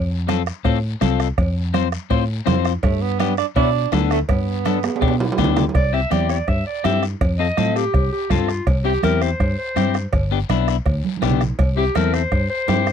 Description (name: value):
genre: latin, cumbia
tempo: 164 BPM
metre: 4/4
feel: straight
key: C major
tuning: A4 = 440 Hz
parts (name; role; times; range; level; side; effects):
- vintage muted fingered electric bass; bass; 0.0-12.9 s; G1 to B2; -21 LUFS; equal; none
- electric guitar at the edge of break-up; accompaniment; 0.3-12.9 s; B3 to C5; -22 LUFS; left 19 dB; none
- bombo; percussion; 0.3-12.9 s; none; -22 LUFS; right 2 dB; none
- congas; percussion; 0.3-12.9 s; none; -25 LUFS; right 7 dB; none
- cowbell and timbales; percussion; 0.3-12.9 s; none; -28 LUFS; right 5 dB; none
- guiro; percussion; 0.3-12.9 s; none; -39 LUFS; left 21 dB; none
- breathy tenor saxophone; second line; 2.8-5.3 s; A3 to D4; -23 LUFS; right 15 dB; none
- clear clarinet; melody; 5.8-12.9 s; F4 to E5; -23 LUFS; equal; none
room: little or no reverb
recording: dry, close 1970s-style studio recording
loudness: -17 LUFS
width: side -8 dB against mid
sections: 0.0-5.8 A section; 5.8-12.9 B section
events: tenor saxophone solo 0.0-5.8; drum fill 4.8-5.8, 11.0-11.6; clarinet solo 5.8-12.9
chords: 0.0 F; 2.8 G; 5.8 C; 7.2 F; 8.7 C; 10.1 G; 11.6 C